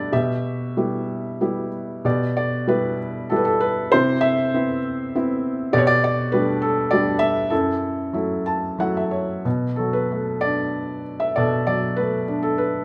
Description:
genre	classical, lyrical solo piano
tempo	89-102 BPM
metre	3/4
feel	rubato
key	B minor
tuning	A4 = 439 Hz
part	felt-muted upright piano	solo	0.0-12.8 s	F#2 to A5	-22 LUFS	equal	none
room	moderate recital hall reverb, RT60 1.3 s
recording	none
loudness	-22 LUFS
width	mono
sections	0.0-9.5 A section; 9.5-12.8 B section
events	felt piano fill 8.1-9.5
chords	0.1 Em/B; 3.9 Cmaj7; 5.7 A7sus4/B; 7.5 F#m7; 9.5 Bm7

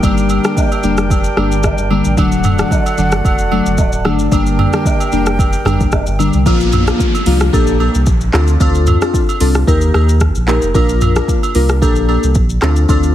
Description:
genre	afrobeats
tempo	112 BPM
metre	4/4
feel	swing 55% on 16ths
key	G harmonic minor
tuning	A4 = 443 Hz
part	glassy digital keys	accompaniment	0.0-13.1 s	D3 to Bb4	-16 LUFS	left 2 dB	chorus
part	mellow woodwind section	sustained chords	0.0-6.4 s	D4 to G5	-20 LUFS	right 2 dB	none
part	warm sub bass	bass	0.0-13.1 s	D1 to Eb2	-15 LUFS	equal	none
part	afro-pop drum kit	drums	0.0-13.1 s	handclaps, hi-hat, kick drum, rim click, shaker, toms	-16 LUFS	equal	none
part	agogo bells and woodblock	percussion	0.0-13.0 s	none	-24 LUFS	right 5 dB	none
part	downlifter	sound effects	6.5-10.7 s	none	-25 LUFS	right 2 dB	none
room	little or no reverb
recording	heavily compressed radio sound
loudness	-11 LUFS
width	side -12 dB against mid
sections	0.0-6.5 A section; 6.5-13.1 B section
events	none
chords	0.0 Gm; 2.2 D; 4.3 Gm; 6.5 Bb; 7.5 Gmadd9/Bb; 8.3 Dm7; 9.7 Eb; 10.7 Bb; 11.8 Gmadd9/Bb; 12.6 Dm7

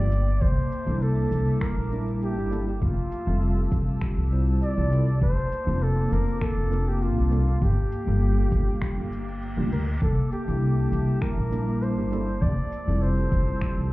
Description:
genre	sunset chillout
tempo	100 BPM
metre	4/4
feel	straight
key	F major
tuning	A4 = 440 Hz
part	breathy flugelhorn	melody	0.0-13.9 s	F4 to D5	-32 LUFS	equal	ping-pong delay
part	tine electric piano	accompaniment	0.0-13.9 s	G3 to A5	-31 LUFS	equal	medium stereo tremolo, auto-pan
part	airy breathy pad	sustained chords	0.0-13.9 s	Bb3 to E6	-36 LUFS	equal	chorus
part	upright bass	bass	0.0-13.9 s	F1 to D2	-24 LUFS	equal	none
part	electronic shaker and finger snaps	drums	0.1-13.9 s	none	-41 LUFS	equal	none
part	electronic kick drum	drums	0.4-13.7 s	none	-26 LUFS	equal	none
part	reverse cymbal	sound effects	9.0-10.0 s	none	-44 LUFS	equal	none
room	little or no reverb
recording	heard muffled through a wall, club reverb, EQ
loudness	-22 LUFS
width	side -19 dB against mid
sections	0.0-13.9 A section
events	reverse cymbal 9.0-10.0; kick drops out 9.4-10.0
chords	0.4 C13; 2.8 Fmaj9; 5.2 Bbmaj7/F; 7.6 Gm7; 10.0 C13; 12.4 Fmaj9

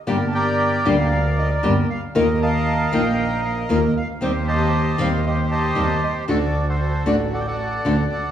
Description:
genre	tango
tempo	116 BPM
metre	4/4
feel	rubato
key	G minor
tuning	A4 = 440 Hz
part	bandoneon	melody	0.1-8.3 s	F#4 to A5	-22 LUFS	right 1 dB	none
part	nylon-string guitar	accompaniment	0.1-7.9 s	D3 to Bb4	-22 LUFS	left 2 dB	none
part	clear double bass	bass	0.1-8.3 s	G1 to Eb2	-22 LUFS	right 1 dB	none
room	wet recital hall reverb, RT60 1.7 s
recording	recorded in a church or concert hall, small room ambience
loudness	-18 LUFS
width	side -10 dB against mid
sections	0.1-8.3 A section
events	none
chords	0.1 Gm; 2.1 Ebsus2; 4.2 Cm/Eb; 6.3 D

